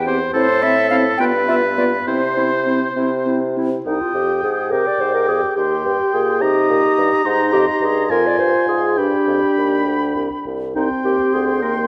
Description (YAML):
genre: quick classical-period movement for wind quintet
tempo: 70 BPM (dotted quarters)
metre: 6/8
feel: rubato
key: C major, C minor from 3.9 s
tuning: A4 = 439 Hz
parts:
  - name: bright concert flute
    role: melody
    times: 0.0-11.9 s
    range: C5 to Eb6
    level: -26 LUFS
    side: equal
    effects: none
  - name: dark bassoon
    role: bass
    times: 0.0-11.9 s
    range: C2 to C3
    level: -25 LUFS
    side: equal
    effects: none
  - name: clear oboe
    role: second line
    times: 0.1-11.9 s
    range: A4 to Bb5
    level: -24 LUFS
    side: equal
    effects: none
  - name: warm French horn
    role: accompaniment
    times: 0.1-11.9 s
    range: Bb3 to G4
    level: -25 LUFS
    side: equal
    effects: none
  - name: warm clarinet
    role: accompaniment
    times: 0.1-11.8 s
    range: Eb4 to D5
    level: -22 LUFS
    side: equal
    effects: none
room: wet scoring stage reverb, RT60 1.7 s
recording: none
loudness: -18 LUFS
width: mono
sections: 0.0-3.9 A section; 3.9-11.9 B section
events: none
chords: 0.3 Am; 1.2 G7; 2.1 C; 3.9 Cm; 5.6 Cm/Eb; 7.3 Ab; 8.1 Fm; 9.0 G; 10.8 Cm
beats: | 0.35 1.20 | 2.08 2.97 | 3.86 4.72 | 5.57 6.42 | 7.26 8.11 | 8.98 9.86 | 10.75 11.62